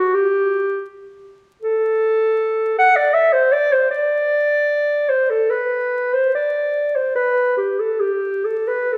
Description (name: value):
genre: classical, free, expressive piece for unaccompanied clarinet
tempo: 61-83 BPM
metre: 3/4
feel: rubato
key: A dorian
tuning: A4 = 440 Hz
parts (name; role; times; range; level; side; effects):
- dark clarinet; solo; 0.0-9.0 s; F#4 to F#5; -18 LUFS; equal; none
room: wet recital hall reverb, RT60 1.5 s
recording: recorded in a church or concert hall, vinyl crackle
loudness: -18 LUFS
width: mono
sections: 0.0-9.0 A section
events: none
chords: none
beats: 0.16 0.89 | 1.64 2.40 3.17 | 3.94 4.71 5.51 | 6.35 7.17 8.03 | 8.95